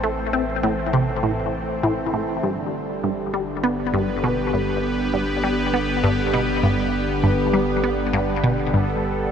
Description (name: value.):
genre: ambient, sequencer-driven space music.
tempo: 100 BPM.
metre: 4/4.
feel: straight.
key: unclear.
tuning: A4 = 440 Hz.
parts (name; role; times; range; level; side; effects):
phased analog pad; sustained chords; 0.0-9.3 s; D3 to C5; -23 LUFS; equal; phaser, chorus, shimmer reverb.
resonant blip pluck; riff; 0.0-9.0 s; G2 to C4; -23 LUFS; equal; phaser, cassette tape, ping-pong delay, shimmer reverb.
warm sub bass; bass; 0.0-9.3 s; G1 to A1; -32 LUFS; equal; none.
room: wet huge ambient reverb, RT60 7.6 s.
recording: none.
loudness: -19 LUFS.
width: side -8 dB against mid.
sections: 0.0-9.3 A section.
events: filter sweep on synth arpeggio sound 0.0-9.3.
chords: 0.0 Am; 2.4 G.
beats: | 0.04 0.64 1.24 1.84 | 2.44 3.04 3.64 4.24 | 4.84 5.44 6.04 6.64 | 7.24 7.84 8.44 9.04.